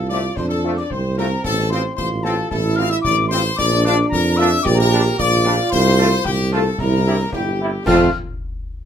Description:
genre	military-style march for wind band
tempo	112 BPM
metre	2/4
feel	straight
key	F major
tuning	A4 = 439 Hz
part	bright trumpet section	melody	0.0-8.1 s	F4 to F5	-22 LUFS	left 4 dB	none
part	warm euphonium	second line	0.0-7.6 s	C4 to G4	-24 LUFS	right 3 dB	none
part	mellow tuba	bass	0.0-8.1 s	G1 to F2	-19 LUFS	right 2 dB	none
part	mellow hollow wooden piccolo	second line	0.1-8.2 s	G5 to F6	-24 LUFS	left 4 dB	none
part	warm French horn section	accompaniment	0.1-8.1 s	A3 to A4	-24 LUFS	left 4 dB	none
part	clear trombone section	sustained chords	0.1-8.1 s	F3 to F4	-25 LUFS	right 2 dB	none
part	concert snare drum, concert bass drum and clash cymbals	drums	0.1-8.2 s	none	-30 LUFS	left 1 dB	none
room	moderate studio reverb, RT60 0.6 s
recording	none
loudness	-15 LUFS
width	side -8 dB against mid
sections	0.0-7.9 A section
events	none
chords	0.0 F; 1.4 F/A; 3.6 Bb; 4.7 Gm/Bb; 5.7 F/C; 6.8 C7; 7.9 F

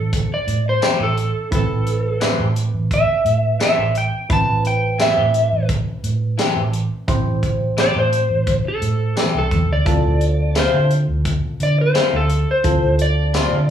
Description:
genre	straight-eighth soul blues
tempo	86 BPM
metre	4/4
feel	straight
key	A minor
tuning	A4 = 440 Hz
part	electric slide guitar	melody	0.0-13.7 s	A4 to A5	-20 LUFS	equal	none
part	barky reed electric piano	accompaniment	0.0-13.7 s	C4 to C5	-29 LUFS	right 2 dB	phaser
part	vintage muted fingered electric bass	bass	0.0-13.7 s	A1 to D3	-20 LUFS	right 1 dB	none
part	tight funk drum kit	drums	0.1-13.5 s	hi-hat, kick drum, snare drum, tambourine	-22 LUFS	equal	none
part	electric guitar at the edge of break-up	stabs	0.8-13.6 s	E3 to G4	-24 LUFS	left 4 dB	phaser
room	wet large studio reverb, RT60 0.8 s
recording	band playing live in one room, small room ambience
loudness	-16 LUFS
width	side -9 dB against mid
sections	0.0-13.7 A section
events	none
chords	0.0 Am7; 9.9 Dm7

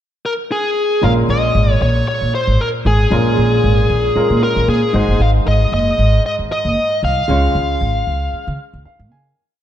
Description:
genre	1980s-style pop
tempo	115 BPM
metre	4/4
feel	swing 55% on 16ths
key	Bb minor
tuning	A4 = 441 Hz
part	bluesy overdriven lead guitar	melody	0.3-8.8 s	Ab4 to F5	-18 LUFS	left 1 dB	distortion
part	clear baby grand piano	accompaniment	1.0-9.4 s	Ab2 to Ab5	-20 LUFS	equal	none
part	upright bass	bass	1.0-9.3 s	Gb1 to Db3	-16 LUFS	equal	none
room	moderate scoring stage reverb, RT60 1.9 s, small room ambience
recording	dark, warm production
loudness	-13 LUFS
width	side -11 dB against mid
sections	0.0-1.0 pickup bar; 1.0-9.4 verse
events	fade-out 7.3-9.4; grand piano fill 8.6-9.4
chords	0.0 N.C.; 1.0 Bbm7; 4.9 Ab7; 7.3 Db

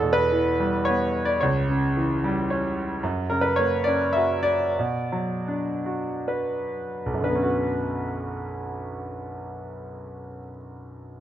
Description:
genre	classical, lyrical solo piano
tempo	58-113 BPM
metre	3/4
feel	rubato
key	B minor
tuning	A4 = 436 Hz
part	bright concert grand piano	solo	0.0-11.2 s	B1 to E5	-23 LUFS	equal	none
room	light reverb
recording	close, detailed microphones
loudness	-22 LUFS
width	side -11 dB against mid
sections	0.0-7.2 A section; 7.2-11.2 B section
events	grand piano fill 2.2-3.0; slowing down 3.0-7.2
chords	0.0 Em; 1.4 C#dim; 3.0 F#; 4.8 Bm; 7.2 Bmadd9

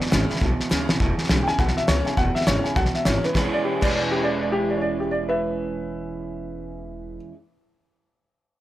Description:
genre	rockabilly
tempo	204 BPM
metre	4/4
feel	swing 62% on 8ths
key	E mixolydian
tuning	A4 = 444 Hz
part	picked steel-string acoustic guitar	accompaniment	0.0-7.4 s	E2 to E4	-30 LUFS	equal	none
part	electric guitar through a small old amp	riff	0.0-7.4 s	E2 to B4	-28 LUFS	right 3 dB	none
part	upright bass	bass	0.0-7.2 s	E1 to D2	-28 LUFS	equal	none
part	cloth-damped thuddy drum kit	drums	0.0-3.9 s	crash cymbal, hi-hat, kick drum, snare drum	-24 LUFS	equal	none
part	dark upright piano	melody	1.4-7.2 s	G4 to G#5	-25 LUFS	left 1 dB	none
room	light reverb, studio ambience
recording	none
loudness	-20 LUFS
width	side -14 dB against mid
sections	0.0-1.0 A section; 1.0-3.4 B section; 3.4-5.7 C section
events	drum fill 0.7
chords	0.0 E6

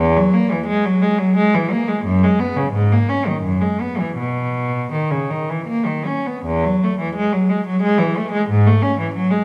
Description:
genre	classical, baroque-style suite movement for unaccompanied cello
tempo	76-90 BPM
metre	3/4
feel	rubato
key	B major, E major from 6.4 s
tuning	A4 = 440 Hz
part	rich cello	solo	0.0-9.4 s	E2 to C#4	-18 LUFS	equal	none
room	wet recital hall reverb, RT60 1.9 s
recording	none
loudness	-18 LUFS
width	mono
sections	0.0-6.4 A section; 6.4-9.4 A section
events	none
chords	none

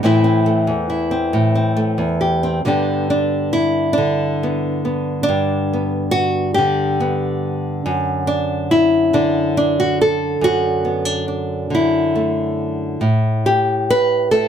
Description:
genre	folk, solo fingerstyle acoustic guitar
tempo	46 BPM (dotted quarters)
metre	6/8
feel	straight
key	unclear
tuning	A4 = 438 Hz
part	nylon-string guitar	solo	0.0-14.5 s	E2 to B4	-15 LUFS	equal	none
room	light reverb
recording	close, detailed microphones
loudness	-16 LUFS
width	side -8 dB against mid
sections	0.0-2.6 A section; 2.6-14.5 B section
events	none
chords	0.0 Am; 2.6 G; 7.9 Dadd9/F#; 13.0 A7(no3)

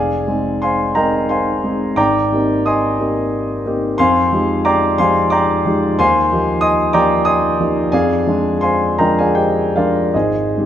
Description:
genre	classical, impressionist solo piano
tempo	73-96 BPM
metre	3/4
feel	rubato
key	F dorian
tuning	A4 = 440 Hz
part	clear concert grand piano	solo	0.0-10.7 s	F1 to Eb6	-13 LUFS	equal	none
room	moderate concert hall reverb, RT60 2.2 s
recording	none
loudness	-13 LUFS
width	side -10 dB against mid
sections	0.0-10.7 A section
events	none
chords	0.0 Fm7; 2.0 Abmaj9; 4.0 Fm9; 6.0 Eb69; 7.9 Fm6; 10.1 Abmaj7

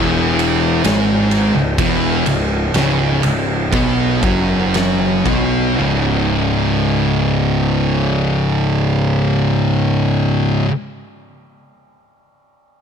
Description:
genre	stoner and doom metal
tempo	56-66 BPM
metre	4/4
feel	straight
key	C# minor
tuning	A4 = 440 Hz
part	thick fuzz guitar	riff	0.0-10.7 s	C#2 to B3	-19 LUFS	left 9 dB	distortion
part	thick fuzz guitar	riff	0.0-10.7 s	C#2 to B3	-18 LUFS	right 8 dB	distortion
part	fuzz picked electric bass	bass	0.0-10.6 s	C#1 to B1	-20 LUFS	equal	overdrive
part	oversized low-tuned drum kit	drums	0.4-5.5 s	kick drum, ride cymbal, snare drum	-22 LUFS	equal	none
room	light reverb, small room ambience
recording	none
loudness	-14 LUFS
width	side -7 dB against mid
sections	0.0-5.8 A section; 5.8-10.0 B section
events	slowing down 0.0-5.8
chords	0.0 C#m; 5.8 C#5

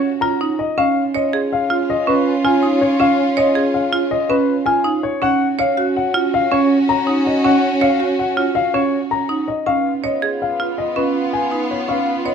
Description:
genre	classical, minimalist pattern music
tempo	162 BPM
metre	6/4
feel	straight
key	Db mixolydian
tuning	A4 = 440 Hz
part	warm grand piano	melody	0.0-12.3 s	Cb5 to Bb5	-20 LUFS	left 7 dB	none
part	clear studio violin section	sustained chords	0.0-12.3 s	Cb4 to Gb4	-21 LUFS	equal	none
part	marimba with hard mallets	arpeggios	0.0-12.3 s	Db4 to Db5	-19 LUFS	right 6 dB	none
room	wet large studio reverb, RT60 1.1 s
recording	dark, warm production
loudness	-15 LUFS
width	side -7 dB against mid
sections	0.0-12.3 A section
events	none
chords	0.0 Ebm7; 0.8 Db; 5.2 Ebm7 (rootless); 9.7 Db7

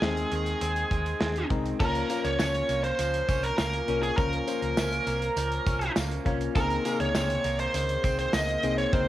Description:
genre	1980s-style pop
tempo	101 BPM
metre	4/4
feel	straight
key	unclear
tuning	A4 = 441 Hz
part	bluesy overdriven lead guitar	melody	0.0-9.1 s	Ab4 to Eb5	-28 LUFS	equal	distortion, cassette tape
part	FM electric piano	accompaniment	0.0-9.1 s	C3 to C5	-33 LUFS	left 5 dB	chorus, cassette tape
part	direct-recorded clean electric guitar	riff	0.0-9.1 s	Eb3 to Db4	-37 LUFS	right 8 dB	lush chorus, cassette tape, analog delay
part	hollow-body short-scale picked electric bass	bass	0.0-9.1 s	C2 to Eb2	-32 LUFS	equal	none
part	modern studio drum kit	drums	0.0-9.1 s	crash cymbal, hi-hat, kick drum, snare drum	-31 LUFS	equal	cassette tape
part	tambourine	percussion	1.8-8.8 s	none	-46 LUFS	left 8 dB	none
room	moderate spring reverb, RT60 2.4 s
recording	home recording on cassette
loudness	-25 LUFS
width	side -14 dB against mid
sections	0.0-1.8 A section; 1.8-9.1 B section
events	none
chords	0.0 Ab/Eb; 1.8 Bbm; 6.6 Abadd9

